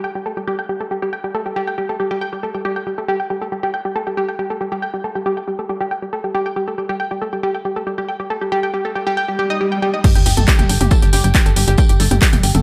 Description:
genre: driving peak-time techno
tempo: 138 BPM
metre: 4/4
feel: straight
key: unclear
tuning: A4 = 440 Hz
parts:
  - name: analog pluck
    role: riff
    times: 0.0-12.6 s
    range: G4 to G5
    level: -23 LUFS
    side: equal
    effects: chorus, tube saturation, sidechain pumping, delay
  - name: swell and sub drop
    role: sound effects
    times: 9.3-11.8 s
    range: none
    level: -27 LUFS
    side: equal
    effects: none
  - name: electronic kick drum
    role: drums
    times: 10.0-12.3 s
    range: none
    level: -16 LUFS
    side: equal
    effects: none
  - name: modern studio drum kit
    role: drums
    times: 10.0-12.5 s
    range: hi-hat, snare drum, tambourine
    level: -32 LUFS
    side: equal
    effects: sidechain pumping on hats, high-pass filter on hats, high-pass filter on snare, sidechain pumping on perc, high-pass filter on perc, high-pass filter on room
  - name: techno drum kit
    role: drums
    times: 10.0-12.6 s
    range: crash cymbal, handclaps, hi-hat, toms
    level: -22 LUFS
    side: equal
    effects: none
  - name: tight sequencer bass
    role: bass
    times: 10.2-12.6 s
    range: F1 to G1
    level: -18 LUFS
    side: equal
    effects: sidechain pumping
room: moderate plate reverb, RT60 1.0 s, small room ambience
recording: dreamy mix soaked in reverb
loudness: -19 LUFS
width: mono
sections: 0.0-10.0 A section; 10.0-12.6 B section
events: filter sweep on synth arpeggio sound 0.0-10.0; swell 9.3-10.0; drop 10.0-12.6; impact 10.0-11.8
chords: 0.0 Gsus2; 10.0 Fadd9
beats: 0.04 0.48 0.91 | 1.35 1.78 2.22 2.65 | 3.08 3.52 3.96 4.39 | 4.82 5.26 5.69 6.13 | 6.56 7.00 7.43 7.87 | 8.30 8.74 9.17 9.61 | 10.04 10.48 10.91 11.35 | 11.78 12.22

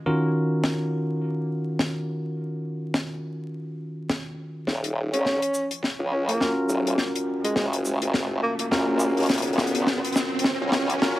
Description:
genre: glitch hop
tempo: 104 BPM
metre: 4/4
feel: swing 58% on 16ths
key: Eb minor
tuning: A4 = 440 Hz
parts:
  - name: bell-like tine electric piano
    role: stabs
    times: 0.0-11.2 s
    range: Eb3 to Bb4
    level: -26 LUFS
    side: equal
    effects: sidechain pumping, low-pass filter, tape echo
  - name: tight funk drum kit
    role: drums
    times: 0.6-11.2 s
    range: hi-hat, shaker, snare drum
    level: -26 LUFS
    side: left 1 dB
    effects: none
  - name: formant-sweep wobble bass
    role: bass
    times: 4.7-11.0 s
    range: Eb1 to Eb2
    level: -27 LUFS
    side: equal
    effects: chorus, high-pass filter
  - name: electronic kick drum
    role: drums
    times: 4.7-11.2 s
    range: none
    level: -39 LUFS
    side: equal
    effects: none
  - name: riser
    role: sound effects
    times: 6.3-11.2 s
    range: none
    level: -32 LUFS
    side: equal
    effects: none
  - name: breathy tenor saxophone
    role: melody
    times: 5.1-8.7 s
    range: Ab3 to Db4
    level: -28 LUFS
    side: equal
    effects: tape echo
room: light reverb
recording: vinyl crackle, high-pass filter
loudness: -23 LUFS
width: side -15 dB against mid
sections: 0.0-4.7 A section; 4.7-11.2 B section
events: build-up 4.7-11.2; drum fill 4.7-11.2; filter sweep on tine electric piano 4.7-11.2; riser 6.3-11.2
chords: 0.0 Ebm7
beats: | 0.06 0.64 1.21 1.79 | 2.37 2.94 3.52 4.10 | 4.68 5.25 5.83 6.41 | 6.98 7.56 8.14 8.71 | 9.29 9.87 10.45 11.02

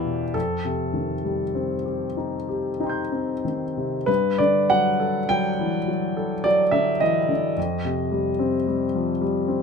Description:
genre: classical, impressionist solo piano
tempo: 46-56 BPM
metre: 3/4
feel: rubato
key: unclear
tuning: A4 = 441 Hz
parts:
  - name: clear concert grand piano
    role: solo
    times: 0.0-9.6 s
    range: E2 to G6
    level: -21 LUFS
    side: left 1 dB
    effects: none
room: light reverb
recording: minimal, uncompressed stereo recording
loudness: -21 LUFS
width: side -5 dB against mid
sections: 0.0-4.1 A section; 4.1-9.6 B section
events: none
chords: 0.3 F9; 4.1 Gsus2; 7.6 Fsus2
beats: | 0.34 1.55 2.80 | 4.08 5.31 6.45 | 7.57 8.67

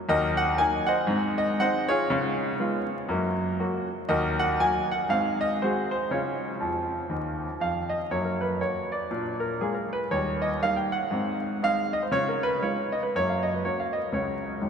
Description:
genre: jazz, stride piano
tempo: 120 BPM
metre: 4/4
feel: swing 59% on 8ths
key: F# major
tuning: A4 = 435 Hz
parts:
  - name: clear concert grand piano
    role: solo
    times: 0.1-14.7 s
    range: G#1 to G#5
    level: -24 LUFS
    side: equal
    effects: none
room: wet cathedral reverb, RT60 5.9 s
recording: recorded in a church or concert hall, vinyl crackle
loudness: -24 LUFS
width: side -6 dB against mid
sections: 0.0-8.1 A section; 8.1-14.7 B section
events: grand piano fill 6.6-8.1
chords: 0.1 D#m; 1.1 G#; 2.1 C#7; 3.1 F#; 4.1 D#m; 5.1 G#7; 6.1 C#; 8.1 F#; 9.1 A#7; 10.1 D#; 11.1 G#; 12.1 C#; 13.1 F#; 14.1 C#5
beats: | 0.08 0.58 1.08 1.59 | 2.09 2.59 3.09 3.59 | 4.09 4.59 5.09 5.59 | 6.09 6.59 7.09 7.59 | 8.09 8.59 9.09 9.59 | 10.09 10.59 11.09 11.59 | 12.09 12.59 13.10 13.60 | 14.10 14.60

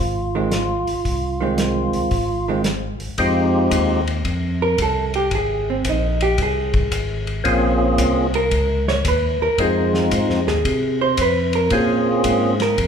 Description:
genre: soul jazz organ trio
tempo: 112 BPM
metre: 4/4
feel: swing 67% on 8ths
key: F minor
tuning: A4 = 440 Hz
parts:
  - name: percussive tonewheel organ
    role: melody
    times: 0.0-4.0, 7.4-12.5 s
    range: Ab3 to Ab4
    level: -20 LUFS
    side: equal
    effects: slow rotary speaker, overdrive
  - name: tonewheel organ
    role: bass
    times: 0.0-12.9 s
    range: Ab1 to C3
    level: -23 LUFS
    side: equal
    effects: overdrive, slow rotary speaker
  - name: vintage hollow-body jazz guitar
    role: accompaniment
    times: 0.4-12.9 s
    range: Eb3 to Db5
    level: -21 LUFS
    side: right 2 dB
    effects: none
  - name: warm soul drum kit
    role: drums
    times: 0.5-12.9 s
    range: hi-hat, kick drum, ride cymbal, snare drum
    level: -26 LUFS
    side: left 1 dB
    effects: none
room: wet recital hall reverb, RT60 1.4 s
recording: recorded in a church or concert hall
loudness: -17 LUFS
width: side -7 dB against mid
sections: 0.0-3.2 A section; 3.2-12.9 B section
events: hollow-body jazz guitar solo 3.2-12.9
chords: 0.0 Fm7; 7.5 Bbm7; 9.6 Fm7; 11.7 Bbm7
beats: 0.52 | 1.05 1.59 2.12 2.65 | 3.18 3.72 4.25 4.78 | 5.32 5.85 6.38 6.92 | 7.45 7.98 8.52 9.05 | 9.59 10.12 10.65 11.19 | 11.72 12.25 12.79

